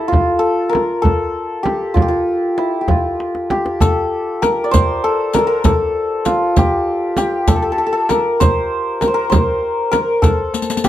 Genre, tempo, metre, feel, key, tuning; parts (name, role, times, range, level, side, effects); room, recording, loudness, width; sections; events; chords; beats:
Persian modal ensemble; 65 BPM (dotted quarters); 6/8; straight; F dastgah mahur; A4 = 440 Hz
santur; melody; 0.0-10.9 s; E4 to D5; -16 LUFS; left 1 dB
frame drum; percussion; 0.1-10.9 s; -18 LUFS; right 2 dB
tombak; percussion; 0.1-10.9 s; -19 LUFS; left 1 dB
riq; percussion; 3.8-10.9 s; -24 LUFS; left 6 dB
light reverb; -14 LUFS; side -12 dB against mid
0.0-3.8 A section; 3.8-10.9 B section
drum fill 3.2-3.8, 10.5-10.9
| 0.12 1.04 | 1.96 2.88 | 3.80 4.72 | 5.64 6.56 | 7.48 8.40 | 9.31 10.23